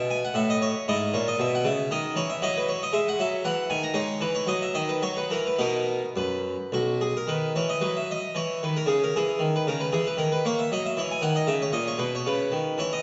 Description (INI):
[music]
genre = classical, baroque-style suite movement for harpsichord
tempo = 115 BPM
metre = 3/4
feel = rubato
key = unclear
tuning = A4 = 440 Hz
[part]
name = harpsichord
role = solo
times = 0.0-13.0 s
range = B1 to A#5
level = -26 LUFS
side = equal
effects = none
[sound]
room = wet scoring stage reverb, RT60 1.9 s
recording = recorded in a church or concert hall, nothing above 7.8 kHz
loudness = -26 LUFS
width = mono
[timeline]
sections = 0.0-7.3 A section; 7.3-13.0 B section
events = none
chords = 0.0 A; 0.9 C#m/G#; 2.4 F#7sus2; 4.0 G#5; 4.5 D#m; 5.0 Esus2; 5.6 B; 7.3 C#m11/D#; 8.9 C#m; 10.4 F#7; 12.0 B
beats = 0.36 | 0.88 1.40 1.90 | 2.42 2.94 3.44 | 3.96 4.49 5.03 | 5.59 6.16 6.72 | 7.28 7.82 8.35 | 8.87 9.40 9.91 | 10.43 10.96 11.47 | 11.99 12.51